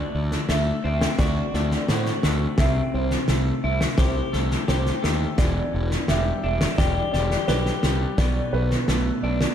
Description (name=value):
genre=post-rock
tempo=86 BPM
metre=4/4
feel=straight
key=E minor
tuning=A4 = 440 Hz
part: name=felt-muted upright piano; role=arpeggios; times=0.0-9.5 s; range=B4 to E5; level=-30 LUFS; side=right 1 dB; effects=analog chorus, ping-pong delay
part: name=twelve-string electric guitar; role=arpeggios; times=0.0-9.5 s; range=E2 to G4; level=-28 LUFS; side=left 3 dB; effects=ping-pong delay
part: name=fuzz fingered electric bass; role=bass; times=0.1-9.4 s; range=E1 to A2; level=-25 LUFS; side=equal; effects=overdrive
part: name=loose indie drum kit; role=drums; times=0.3-9.5 s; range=kick drum, snare drum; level=-25 LUFS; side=equal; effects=none
room=moderate plate reverb, RT60 1.6 s, small room ambience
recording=dreamy mix soaked in reverb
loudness=-20 LUFS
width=side -9 dB against mid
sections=0.0-9.5 A section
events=none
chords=0.0 D7; 2.6 C6; 5.4 Em7; 8.2 Bm7